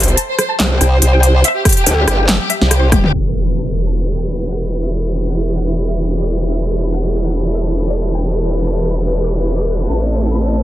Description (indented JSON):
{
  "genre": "heavy wobble dubstep",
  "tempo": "142 BPM",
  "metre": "4/4",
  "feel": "swing 55% on 16ths, half-time",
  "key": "E minor",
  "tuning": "A4 = 440 Hz",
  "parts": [
    { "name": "rich chamber violin section", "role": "melody", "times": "0.0-10.6 s", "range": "E4 to D6", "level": "-21 LUFS", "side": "equal", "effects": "ping-pong delay" },
    { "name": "growl bass", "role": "bass", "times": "0.0-10.6 s", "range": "E1 to E2", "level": "-17 LUFS", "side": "equal", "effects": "chorus, overdrive" },
    { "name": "big-room dance drum kit", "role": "drums", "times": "0.0-3.2 s", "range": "crash cymbal, handclaps, hi-hat, rim click, snare drum, toms", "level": "-16 LUFS", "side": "left 1 dB", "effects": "overdrive, low-pass filter on snare, low-pass filter on hats, low-pass filter on toms, low-pass filter on cymbals" },
    { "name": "formant-sweep wobble bass", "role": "bass", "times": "0.8-3.0 s", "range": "C2", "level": "-11 LUFS", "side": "equal", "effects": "chorus, overdrive" },
    { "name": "electronic kick drum", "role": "drums", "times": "1.7-3.0 s", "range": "none", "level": "-14 LUFS", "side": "equal", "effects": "none" },
    { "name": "rich studio string section", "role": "sustained chords", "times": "3.1-10.6 s", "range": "E3 to B4", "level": "-24 LUFS", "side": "right 2 dB", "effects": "sidechain pumping, low-pass filter" },
    { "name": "impact", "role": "sound effects", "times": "3.1-4.8 s", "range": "none", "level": "-20 LUFS", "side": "equal", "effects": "none" }
  ],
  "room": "digital ambience",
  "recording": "dense, heavily limited modern master, low-pass filter",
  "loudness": "-13 LUFS",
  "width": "side -14 dB against mid",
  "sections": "0.0-3.1 A section; 3.1-10.6 B section",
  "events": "drop 0.0-3.1; band accent 2.7; drum fill 2.9; impact 3.1-4.8; filter sweep on string section 3.1-10.6; filter sweep 3.1-10.6",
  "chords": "0.0 C5; 3.1 Em; 9.9 Am"
}